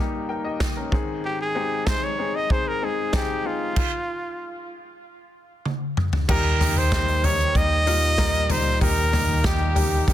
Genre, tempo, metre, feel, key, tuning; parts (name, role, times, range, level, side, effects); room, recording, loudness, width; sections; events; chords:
piano-driven pop; 95 BPM; 4/4; straight; A4 = 440 Hz
clear upright piano; accompaniment; 0.0-10.1 s; Eb2 to G5; -28 LUFS; left 4 dB
natural country drum kit; drums; 0.6-10.1 s; crash cymbal, hi-hat, kick drum, snare drum, toms; -24 LUFS; equal
clear trumpet; melody; 1.2-10.1 s; F4 to Eb5; -25 LUFS; equal; tape echo
rich studio string section; sustained chords; 6.3-10.1 s; Bb2 to G4; -34 LUFS; left 1 dB
hollow-body short-scale picked electric bass; bass; 6.3-10.1 s; Db2 to Eb2; -23 LUFS; right 1 dB
light reverb, small room ambience; dense, heavily limited modern master; -20 LUFS; side -12 dB against mid
0.0-6.3 A section; 6.3-10.1 B section
stop 3.8-6.3; drum fill 5.7-6.3
0.0 Eb; 0.9 Ab; 3.8 N.C.; 6.3 Eb